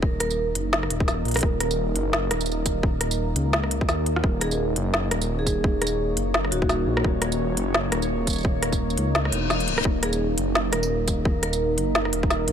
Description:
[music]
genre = half-time drum and bass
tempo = 171 BPM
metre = 4/4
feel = swing 58% on 16ths, half-time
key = Eb minor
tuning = A4 = 439 Hz
[part]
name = deep dark ambient pad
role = sustained chords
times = 0.0-12.5 s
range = Bb3 to Db5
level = -28 LUFS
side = equal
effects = chorus, built-in reverb, sidechain pumping
[part]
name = dark detuned saw bass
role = bass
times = 0.0-12.5 s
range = Eb1 to Eb2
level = -26 LUFS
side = equal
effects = none
[part]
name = electronic kick drum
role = drums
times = 0.0-12.3 s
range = none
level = -24 LUFS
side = equal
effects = none
[part]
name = vibraphone with medium hard mallets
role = melody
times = 0.2-0.3, 4.4-7.0, 10.0-11.6 s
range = Gb4 to Bb4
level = -31 LUFS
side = equal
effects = digital delay
[part]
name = organic electronic drum kit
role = drums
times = 0.2-12.5 s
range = hi-hat, rim click, snare drum, tambourine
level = -26 LUFS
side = equal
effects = none
[part]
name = reverse cymbal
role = sound effects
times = 9.3-9.8 s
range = none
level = -30 LUFS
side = left 7 dB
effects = none
[part]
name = metallic inharmonic drone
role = texture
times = 10.8-12.5 s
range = Eb4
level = -34 LUFS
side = right 6 dB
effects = chorus, built-in reverb
[sound]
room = little or no reverb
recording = none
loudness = -21 LUFS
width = side -8 dB against mid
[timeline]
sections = 0.0-12.5 A section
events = kick drops out 9.1-9.8; reverse cymbal 9.3-9.8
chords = 0.0 Eb5

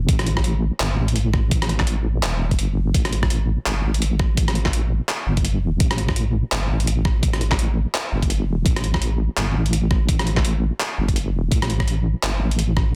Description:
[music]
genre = half-time drum and bass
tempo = 168 BPM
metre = 4/4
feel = swing 58% on 16ths, half-time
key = unclear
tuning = A4 = 441 Hz
[part]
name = deep soft wobble bass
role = bass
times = 0.0-12.9 s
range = E1 to A1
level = -23 LUFS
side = equal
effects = chorus
[part]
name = boom bap sampler-style drum kit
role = drums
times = 0.1-12.8 s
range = handclaps, hi-hat, rim click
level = -28 LUFS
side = equal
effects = soft clipping on snare
[part]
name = electronic kick drum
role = drums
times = 0.1-12.8 s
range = none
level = -24 LUFS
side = equal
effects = overdrive
[sound]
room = little or no reverb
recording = dense, heavily limited modern master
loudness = -21 LUFS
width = mono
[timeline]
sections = 0.0-13.0 A section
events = none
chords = none

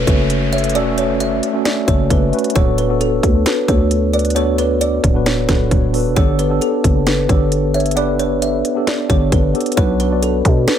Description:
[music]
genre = hip hop, trap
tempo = 133 BPM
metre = 4/4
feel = half-time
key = unclear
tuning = A4 = 439 Hz
[part]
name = kalimba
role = melody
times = 0.0-10.8 s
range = A4 to E5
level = -20 LUFS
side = equal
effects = analog delay
[part]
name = mellow tine electric piano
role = accompaniment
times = 0.0-10.8 s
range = A3 to D5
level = -19 LUFS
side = equal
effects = medium stereo tremolo, analog delay
[part]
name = growling 808-style bass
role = bass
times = 0.0-10.7 s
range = D1 to B2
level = -18 LUFS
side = equal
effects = none
[part]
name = downlifter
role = sound effects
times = 0.0-2.6 s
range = none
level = -29 LUFS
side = equal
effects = none
[part]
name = trap drum kit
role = drums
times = 0.1-10.8 s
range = hi-hat, kick drum, snare drum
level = -17 LUFS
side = equal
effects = none
[part]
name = hollow clarinet-like synth lead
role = second line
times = 0.5-0.7, 4.1-8.0 s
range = A4 to C#5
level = -28 LUFS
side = right 1 dB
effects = none
[sound]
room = little or no reverb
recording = echo-heavy mix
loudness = -13 LUFS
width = side -9 dB against mid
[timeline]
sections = 0.0-10.8 A section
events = none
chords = 0.0 F#m; 2.6 D6; 6.2 Gadd9; 9.8 Bm

